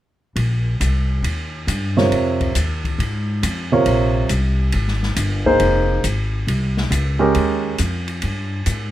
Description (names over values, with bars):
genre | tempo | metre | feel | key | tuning
modal jazz | 138 BPM | 4/4 | swing 67% on 8ths | Bb dorian | A4 = 440 Hz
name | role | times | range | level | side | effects
upright bass | bass | 0.4-8.9 s | F1 to Ab2 | -20 LUFS | equal | none
open jazz drum kit | drums | 0.4-8.8 s | hi-hat, kick drum, ride cymbal, snare drum | -26 LUFS | left 1 dB | none
warm grand piano | accompaniment | 2.0-7.8 s | C3 to Db5 | -16 LUFS | right 2 dB | none
room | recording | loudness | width
little or no reverb | none | -17 LUFS | side -13 dB against mid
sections
0.4-8.9 A section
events
none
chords
0.4 Bb9sus4; 7.4 Eb9sus4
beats
| 0.37 0.81 1.24 1.68 | 2.12 2.55 2.99 3.43 | 3.86 4.30 4.74 5.17 | 5.61 6.04 6.48 6.92 | 7.35 7.79 8.22 8.66